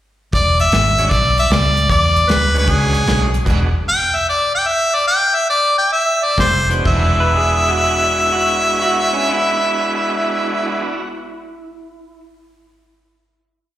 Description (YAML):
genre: electric blues shuffle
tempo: 123-154 BPM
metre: 4/4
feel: swing 68% on 8ths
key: E mixolydian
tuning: A4 = 440 Hz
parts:
  - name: breathy harmonica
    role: melody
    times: 0.3-10.9 s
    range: G#4 to G5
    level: -15 LUFS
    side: left 1 dB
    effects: slapback echo
  - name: vintage muted fingered electric bass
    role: bass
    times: 0.3-3.8, 6.4-10.9 s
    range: E1 to E2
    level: -18 LUFS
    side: equal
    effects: none
  - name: natural country drum kit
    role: drums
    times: 0.3-3.6, 6.4-7.0 s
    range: crash cymbal, hi-hat, kick drum, snare drum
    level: -21 LUFS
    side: equal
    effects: none
  - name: bright tonewheel organ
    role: accompaniment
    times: 1.0-3.7, 6.7-11.1 s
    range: E2 to F#4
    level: -22 LUFS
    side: right 2 dB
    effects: slow rotary speaker, overdrive, slapback echo
  - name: electric guitar through a small old amp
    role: second line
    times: 7.2-12.2 s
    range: C#4 to B4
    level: -22 LUFS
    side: right 2 dB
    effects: slapback echo, digital delay
room: studio ambience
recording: live gig heard through the venue's PA, recital hall reverb, faint mains hum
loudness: -13 LUFS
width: side -13 dB against mid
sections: 0.3-6.9 head; 6.9-10.7 final chord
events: slowing down 3.5-6.9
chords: 0.3 E13; 3.5 E9; 6.4 F5; 6.9 E9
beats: | 0.33 0.72 1.11 1.50 | 1.89 2.28 2.67 3.06 | 3.46 3.85 4.24 4.65 | 5.06 5.48 5.92 6.38 | 6.85 7.34 7.82 8.31 | 8.79 9.28 9.77 10.25